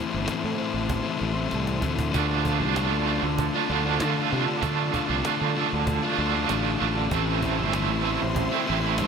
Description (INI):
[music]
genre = quiet-loud alternative rock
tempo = 96 BPM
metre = 4/4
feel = straight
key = unclear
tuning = A4 = 441 Hz
[part]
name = warm symphonic string section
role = sustained chords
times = 0.0-9.1 s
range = E4 to C6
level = -35 LUFS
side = right 3 dB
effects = none
[part]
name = crunchy overdriven guitar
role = riff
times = 0.0-9.1 s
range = A2 to F4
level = -28 LUFS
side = left 8 dB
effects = none
[part]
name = fuzz fingered electric bass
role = bass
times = 0.1-9.1 s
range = G1 to D3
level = -28 LUFS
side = right 1 dB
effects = overdrive
[part]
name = cajon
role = drums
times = 0.1-9.1 s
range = none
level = -32 LUFS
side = right 1 dB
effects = none
[part]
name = overdriven electric guitar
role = riff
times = 2.1-9.1 s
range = A2 to F4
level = -27 LUFS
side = right 21 dB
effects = tremolo
[sound]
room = light reverb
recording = none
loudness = -23 LUFS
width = side -6 dB against mid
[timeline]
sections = 0.0-9.1 A section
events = drum fill 1.5-2.1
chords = 0.0 Am; 2.1 Dm7; 7.1 Am